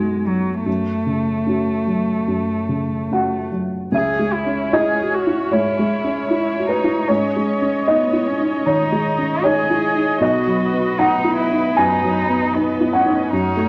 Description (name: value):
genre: neoclassical piano and strings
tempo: 76 BPM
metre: 4/4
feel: rubato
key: C# minor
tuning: A4 = 444 Hz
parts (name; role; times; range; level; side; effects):
- muted cello; second line; 0.0-13.7 s; F#3 to G#4; -24 LUFS; equal; none
- dark upright piano; accompaniment; 0.0-13.7 s; B1 to G#5; -21 LUFS; equal; none
- muted studio string section; sustained chords; 3.9-13.7 s; F#3 to D#5; -28 LUFS; equal; none
room: wet echo chamber reverb, RT60 1.5 s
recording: none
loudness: -19 LUFS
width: mono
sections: 0.0-3.9 A section; 3.9-13.7 B section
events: none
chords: 0.0 B; 0.7 F#m; 3.9 C#m; 7.1 G#sus4; 10.2 B